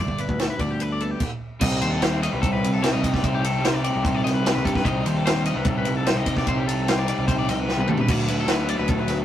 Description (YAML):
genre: math rock and midwest emo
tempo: 148 BPM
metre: 4/4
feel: straight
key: unclear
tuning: A4 = 440 Hz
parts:
  - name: twelve-string electric guitar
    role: accompaniment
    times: 0.0-1.2 s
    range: G2 to A4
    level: -32 LUFS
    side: right 2 dB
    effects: none
  - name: electric guitar at the edge of break-up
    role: arpeggios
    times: 0.0-9.2 s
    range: G4 to Eb5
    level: -29 LUFS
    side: left 3 dB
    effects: tremolo
  - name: picked electric bass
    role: bass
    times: 0.0-9.2 s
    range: G1 to G2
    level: -26 LUFS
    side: equal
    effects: none
  - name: compact cocktail drum kit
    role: drums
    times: 0.1-9.2 s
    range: crash cymbal, kick drum, ride cymbal, snare drum, toms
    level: -24 LUFS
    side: equal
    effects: none
  - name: crunchy overdriven guitar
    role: riff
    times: 1.6-9.2 s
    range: C3 to G4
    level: -25 LUFS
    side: equal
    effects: none
room: moderate stone room reverb, RT60 1.1 s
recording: rough rehearsal-room recording, tube saturation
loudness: -20 LUFS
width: side -11 dB against mid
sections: 0.0-1.6 A section; 1.6-9.2 B section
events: drum fill 7.7-8.1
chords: 0.0 Gmaj9; 1.6 Cm6; 8.1 Bm7/D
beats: 0.40 0.80 1.21 | 1.62 2.02 2.43 2.83 | 3.24 3.64 4.05 4.45 | 4.86 5.26 5.67 6.07 | 6.48 6.88 7.29 7.69 | 8.09 8.50 8.90